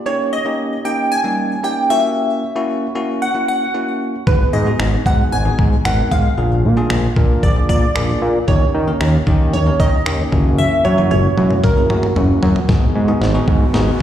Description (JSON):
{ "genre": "dance-pop", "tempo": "114 BPM", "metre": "4/4", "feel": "straight", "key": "G# minor", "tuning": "A4 = 443 Hz", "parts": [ { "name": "downlifter and riser", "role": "sound effects", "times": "0.0-0.1, 13.2-14.0 s", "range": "none", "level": "-36 LUFS", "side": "right 1 dB", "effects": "slapback echo" }, { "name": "glassy wavetable pluck", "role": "melody", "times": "0.1-12.4 s", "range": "A#4 to G#5", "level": "-20 LUFS", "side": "right 1 dB", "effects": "chorus, ping-pong delay, plate reverb, slapback echo" }, { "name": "bell-like tine electric piano", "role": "accompaniment", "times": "0.1-14.0 s", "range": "G3 to A#4", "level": "-22 LUFS", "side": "left 1 dB", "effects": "sidechain pumping, plate reverb, slapback echo" }, { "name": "fat analog bass", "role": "bass", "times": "4.3-13.9 s", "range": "F#1 to D#3", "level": "-16 LUFS", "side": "equal", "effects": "sidechain pumping" }, { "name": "breakbeat sampler-style drum kit", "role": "drums", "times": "4.3-13.9 s", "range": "finger snaps, kick drum, snare drum, toms", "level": "-16 LUFS", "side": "equal", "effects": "none" }, { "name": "soft supersaw", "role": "sustained chords", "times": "12.7-14.0 s", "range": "D#3 to F#4", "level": "-23 LUFS", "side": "right 1 dB", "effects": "sidechain pumping, plate reverb" } ], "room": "light reverb", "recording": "live gig heard through the venue's PA, recital hall reverb", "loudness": "-14 LUFS", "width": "side -11 dB against mid", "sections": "0.0-12.7 A section; 12.7-14.0 B section", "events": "drum fill 10.6-12.7, 12.7-14.0; build-up 12.7-14.0; riser 13.2-14.0", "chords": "0.1 D#7; 1.9 F#7; 4.3 G#m7; 6.4 A#7; 8.5 D#7; 10.3 F#7; 12.7 G#m7" }